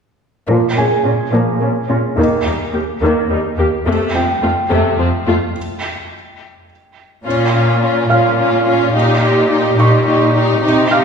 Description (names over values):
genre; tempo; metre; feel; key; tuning
cinematic; 71 BPM (dotted quarters); 6/8; straight; Bb dorian; A4 = 440 Hz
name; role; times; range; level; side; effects
warm symphonic viola section; accompaniment; 0.5-11.0 s; C3 to G4; -15 LUFS; equal; low-pass filter
rich symphonic cello section; bass; 0.5-11.0 s; Eb2 to C3; -17 LUFS; equal; none
felt-muted upright piano; texture; 0.8-11.0 s; Ab4 to F6; -20 LUFS; right 2 dB; ping-pong delay
room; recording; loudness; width
wet scoring stage reverb, RT60 1.6 s; heard from further back in the room; -12 LUFS; side -6 dB against mid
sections
0.5-7.2 A section; 7.2-11.0 B section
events
filter sweep on viola section 0.5-7.2; break 5.6-7.2; build-up 7.2-11.0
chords
0.5 Bbm; 2.2 Eb; 3.9 F; 5.6 N.C.; 7.2 Bbm; 8.9 Eb/Bb